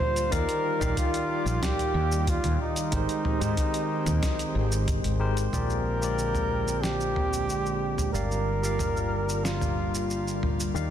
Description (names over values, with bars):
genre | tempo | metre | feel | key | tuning
sunset chillout | 92 BPM | 4/4 | straight | unclear | A4 = 439 Hz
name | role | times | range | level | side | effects
trumpet with bucket mute | melody | 0.0-10.4 s | Eb4 to C5 | -30 LUFS | equal | digital delay
barky tine electric piano | accompaniment | 0.0-10.9 s | Eb3 to F5 | -33 LUFS | moving between left 8 dB and right 5 dB | medium stereo tremolo, auto-pan, digital delay
airy breathy pad | sustained chords | 0.0-10.9 s | D3 to G5 | -33 LUFS | right 1 dB | chorus
dusty soul sampler-style drum kit | drums | 0.0-10.9 s | hi-hat, shaker, snare drum, toms | -32 LUFS | equal | studio ambience
mellow fretless electric bass | bass | 0.3-10.9 s | G1 to Ab2 | -29 LUFS | equal | lush chorus
electronic kick drum | drums | 0.3-5.0 s | none | -30 LUFS | equal | studio ambience
room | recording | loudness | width
light reverb, digital ambience | dense, heavily limited modern master | -24 LUFS | side -10 dB against mid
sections
0.0-5.5 A section; 5.5-10.9 B section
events
filter sweep on tine electric piano 0.0-5.5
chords
0.3 Ebmaj9; 2.9 Abmaj7; 5.5 Bb13; 8.1 Gm7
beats
| 0.31 0.96 1.62 2.27 | 2.92 3.57 4.22 4.88 | 5.53 6.18 6.83 7.49 | 8.14 8.79 9.44 10.10 | 10.75